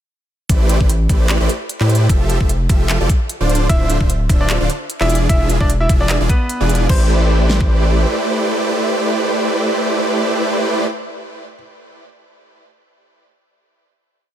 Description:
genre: future bass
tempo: 150 BPM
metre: 4/4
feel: swing 56% on 16ths, half-time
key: A minor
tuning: A4 = 439 Hz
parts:
  - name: supersaw chords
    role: riff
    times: 0.5-10.9 s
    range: D3 to E5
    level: -18 LUFS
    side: right 1 dB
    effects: sidechain pumping, digital delay
  - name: saturated sub bass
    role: bass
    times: 0.5-8.1 s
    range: D1 to A2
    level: -16 LUFS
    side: equal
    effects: sidechain pumping
  - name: pop drum kit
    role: drums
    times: 0.5-7.7 s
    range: kick drum, snare drum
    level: -15 LUFS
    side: equal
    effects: studio reverb
  - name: pop drum kit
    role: drums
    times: 0.5-7.0 s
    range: crash cymbal, handclaps, hi-hat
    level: -24 LUFS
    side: equal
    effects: studio reverb
  - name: bright grand piano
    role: melody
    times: 3.7-11.6 s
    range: B3 to E5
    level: -24 LUFS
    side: equal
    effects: sidechain pumping, dub echo
room: digital ambience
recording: none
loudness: -13 LUFS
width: side -11 dB against mid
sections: 0.5-6.9 drop; 6.9-10.1 final chord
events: drop 0.5-6.9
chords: 0.5 Am11; 2.1 Fmaj9; 3.5 Dm9; 5.1 E7b9; 6.9 Am11

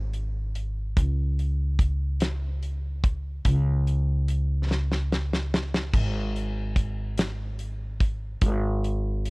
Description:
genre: six-eight pop ballad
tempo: 48 BPM (dotted quarters)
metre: 6/8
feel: straight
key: unclear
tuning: A4 = 439 Hz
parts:
  - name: upright bass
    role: bass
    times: 0.0-9.3 s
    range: Ab1 to Db2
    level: -26 LUFS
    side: equal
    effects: none
  - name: damped 70s drum kit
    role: drums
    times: 0.1-9.3 s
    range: crash cymbal, hi-hat, kick drum, snare drum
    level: -25 LUFS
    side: equal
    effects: none
room: little or no reverb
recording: worn, warbling old tape, cassette tape, warbly pitch drift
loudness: -24 LUFS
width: side -29 dB against mid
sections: 0.0-9.3 A section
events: drum fill 4.7-5.9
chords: none

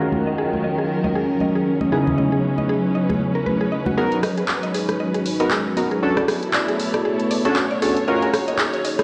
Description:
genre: deep house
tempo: 117 BPM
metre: 4/4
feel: swing 56% on 16ths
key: G# minor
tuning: A4 = 440 Hz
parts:
  - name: dark analog pad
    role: sustained chords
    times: 0.1-9.0 s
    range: F#3 to E6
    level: -29 LUFS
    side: equal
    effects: chorus
  - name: mallet-like synth pluck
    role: arpeggios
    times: 0.0-9.0 s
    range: F#4 to D#5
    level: -30 LUFS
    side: equal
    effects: chorus, tape echo
  - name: warm analog keys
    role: stabs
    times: 0.0-8.3 s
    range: C#3 to A#4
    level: -25 LUFS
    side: equal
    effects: chorus, analog delay
  - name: dark studio string section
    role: texture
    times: 0.0-9.0 s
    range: D#3 to C#5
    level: -27 LUFS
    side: equal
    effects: none
  - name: congas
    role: percussion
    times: 0.1-4.0 s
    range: none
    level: -29 LUFS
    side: equal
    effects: none
  - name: warm sub bass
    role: bass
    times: 4.0-9.0 s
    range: none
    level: barely audible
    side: none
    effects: none
  - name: punchy analog drum machine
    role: drums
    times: 4.1-9.0 s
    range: handclaps, hi-hat, rim click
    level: -26 LUFS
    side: equal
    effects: none
room: moderate lush hall reverb, RT60 2.0 s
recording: played on a big sound system in a bare room, cassette tape, stone room reverb, low-pass filter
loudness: -21 LUFS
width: mono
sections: 0.0-4.0 A section; 4.0-9.0 B section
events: build-up 4.0-9.0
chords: 0.0 D#m7; 1.9 C#m7; 4.0 G#m7; 6.0 Bm7; 8.1 D#m7

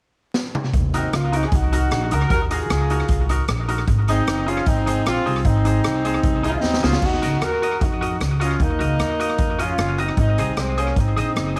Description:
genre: ska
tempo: 153 BPM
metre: 4/4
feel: straight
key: Eb dorian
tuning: A4 = 441 Hz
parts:
  - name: street-band drum kit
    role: drums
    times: 0.3-11.6 s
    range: crash cymbal, hi-hat, kick drum, rim click, snare drum, toms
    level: -26 LUFS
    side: equal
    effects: tape echo
  - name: upright bass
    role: bass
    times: 0.7-11.6 s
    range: Gb1 to F2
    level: -25 LUFS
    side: equal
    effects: none
  - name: mellow horn section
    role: melody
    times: 0.9-11.6 s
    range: Ab3 to Bb4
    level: -25 LUFS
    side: equal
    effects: none
  - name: semi-hollow electric guitar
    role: accompaniment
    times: 0.9-11.6 s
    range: Eb4 to Eb5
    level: -30 LUFS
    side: equal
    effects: tape echo
room: small room ambience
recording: vinyl crackle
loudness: -20 LUFS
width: mono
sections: 0.7-7.0 A section; 7.0-11.6 B section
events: drum fill 0.3-0.7, 6.6-7.0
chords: 0.0 N.C.; 0.7 Ebm; 3.9 Ab; 7.0 Ebm; 10.2 Ab

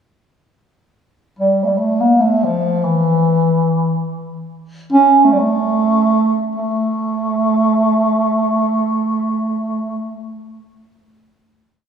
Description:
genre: Persian modal ensemble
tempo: free time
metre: none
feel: none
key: A dastgah homayun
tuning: A4 = 440 Hz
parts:
  - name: breathy bass clarinet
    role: solo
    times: 1.4-10.1 s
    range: E3 to C#4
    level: -14 LUFS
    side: right 1 dB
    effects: none
room: wet concert hall reverb, RT60 1.9 s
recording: heard from further back in the room, small room ambience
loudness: -13 LUFS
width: side -7 dB against mid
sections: 1.0-6.6 free-time section; 6.6-9.3 final note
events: none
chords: none

